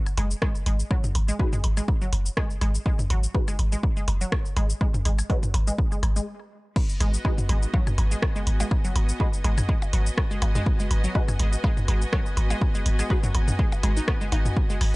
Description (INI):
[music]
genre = minimal techno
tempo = 123 BPM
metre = 4/4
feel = swing 55% on 16ths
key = G# minor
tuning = A4 = 440 Hz
[part]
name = punchy analog drum machine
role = drums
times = 0.1-14.9 s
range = cabasa, crash cymbal, hi-hat, rim click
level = -32 LUFS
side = equal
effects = none
[part]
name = electronic percussion blips and toms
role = percussion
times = 0.1-14.9 s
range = none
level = -32 LUFS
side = equal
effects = none
[part]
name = resonant blip pluck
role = riff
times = 0.2-14.8 s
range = F#3 to D#4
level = -34 LUFS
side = equal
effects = chorus, sidechain pumping, tape echo
[part]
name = punchy sub bass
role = bass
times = 0.2-15.0 s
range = F#1 to G#1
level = -22 LUFS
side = equal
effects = sidechain pumping
[part]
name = electronic kick drum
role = drums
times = 0.4-14.7 s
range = none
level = -25 LUFS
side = equal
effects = none
[part]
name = filtered dub chord stab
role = stabs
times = 1.4-13.2 s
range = D#4 to B4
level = -36 LUFS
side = left 2 dB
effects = phaser, ensemble chorus, analog delay
[part]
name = clear symphonic string section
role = texture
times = 6.8-15.0 s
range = B3 to G#5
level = -34 LUFS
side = equal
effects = sidechain pumping
[sound]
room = digital ambience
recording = dry, gritty hardware recording, nothing above 11.0 kHz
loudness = -22 LUFS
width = side -23 dB against mid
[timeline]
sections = 0.0-6.8 A section; 6.8-15.0 B section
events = stop 6.3-6.8; drop 6.8-15.0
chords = 0.0 G#7(no3); 6.8 G#m7